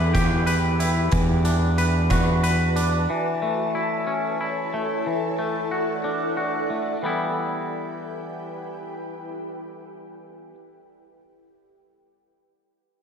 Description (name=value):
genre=post-rock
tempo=61 BPM (dotted quarters)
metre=6/8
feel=straight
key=E dorian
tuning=A4 = 441 Hz
part: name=ethereal airy pad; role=sustained chords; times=0.0-10.3 s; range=E4 to A5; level=-29 LUFS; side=right 1 dB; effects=ensemble chorus, built-in reverb
part: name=twangy electric guitar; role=arpeggios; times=0.0-10.6 s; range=E3 to B4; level=-26 LUFS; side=left 2 dB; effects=spring reverb, analog delay
part: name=growling fingered electric bass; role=bass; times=0.0-3.1 s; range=E2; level=-21 LUFS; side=equal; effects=overdrive
part: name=oversized low-tuned drum kit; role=drums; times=0.1-2.9 s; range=hi-hat, kick drum, rim click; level=-26 LUFS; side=equal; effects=none
room=moderate plate reverb, RT60 1.9 s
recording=dreamy mix soaked in reverb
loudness=-21 LUFS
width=side -7 dB against mid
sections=0.0-7.0 A section; 7.0-11.0 B section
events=none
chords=0.0 Em; 1.1 Bm7/E; 3.1 A/E; 5.1 Dadd9/E; 7.0 Em